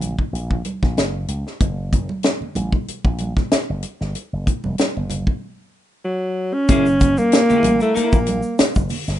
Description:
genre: funk.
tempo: 94 BPM.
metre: 4/4.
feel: straight.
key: F# mixolydian.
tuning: A4 = 441 Hz.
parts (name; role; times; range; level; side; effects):
slap bass with an envelope filter; bass; 0.0-9.2 s; E1 to C#2; -24 LUFS; equal; none.
tight funk drum kit; drums; 0.0-9.2 s; hi-hat, kick drum, snare drum; -19 LUFS; equal; none.
congas; percussion; 0.0-9.1 s; none; -28 LUFS; right 4 dB; none.
breathy alto saxophone; melody; 6.0-8.6 s; F#3 to C#4; -17 LUFS; equal; analog delay.
clean electric guitar; accompaniment; 6.7-8.2 s; A#3 to A#4; -23 LUFS; left 4 dB; none.
egg shaker; percussion; 6.7-9.2 s; none; -40 LUFS; left 3 dB; none.
room: moderate studio reverb, RT60 0.5 s.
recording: rough home demo mix, nothing above 10.5 kHz.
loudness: -17 LUFS.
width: side -12 dB against mid.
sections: 0.0-6.7 A section; 6.7-9.2 B section.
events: break 5.4-6.7.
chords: 0.0 F#; 6.7 F#9.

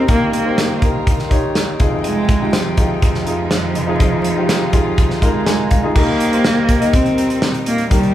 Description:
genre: piano-driven pop.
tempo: 123 BPM.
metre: 4/4.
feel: straight.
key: unclear.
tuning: A4 = 439 Hz.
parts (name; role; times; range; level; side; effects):
rich cello; melody; 0.0-8.1 s; F3 to C4; -18 LUFS; right 2 dB; none.
clear concert grand piano; accompaniment; 0.0-8.1 s; F1 to Ab5; -20 LUFS; left 2 dB; none.
bright studio string section; sustained chords; 0.0-8.1 s; Eb2 to G5; -27 LUFS; right 1 dB; none.
modern studio drum kit; drums; 0.1-8.1 s; crash cymbal, hi-hat, kick drum, snare drum; -17 LUFS; equal; none.
room: moderate large studio reverb, RT60 1.4 s.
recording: band playing live in one room, vinyl crackle.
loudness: -13 LUFS.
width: side -12 dB against mid.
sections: 0.0-6.0 A section; 6.0-8.1 B section.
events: grand piano fill 5.0-6.0.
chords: 0.0 Eb; 1.8 Fm7; 6.0 Eb.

